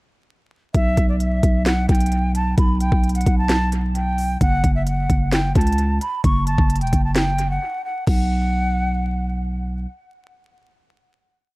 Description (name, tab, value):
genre	hip hop, trap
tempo	131 BPM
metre	4/4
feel	half-time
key	unclear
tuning	A4 = 440 Hz
part	jazz flute	melody	0.7-9.4 s	D5 to C#6	-25 LUFS	equal	dub echo
part	growling 808-style bass	bass	0.7-9.9 s	E1 to C#2	-20 LUFS	equal	none
part	trap drum kit	drums	0.7-8.2 s	crash cymbal, hi-hat, kick drum, snare drum	-20 LUFS	equal	none
room	little or no reverb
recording	echo-heavy mix, vinyl crackle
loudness	-17 LUFS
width	side -22 dB against mid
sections	0.7-8.1 verse; 8.1-11.6 final chord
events	break 7.6-8.1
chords	0.7 G6/B; 4.4 F#m; 8.1 B5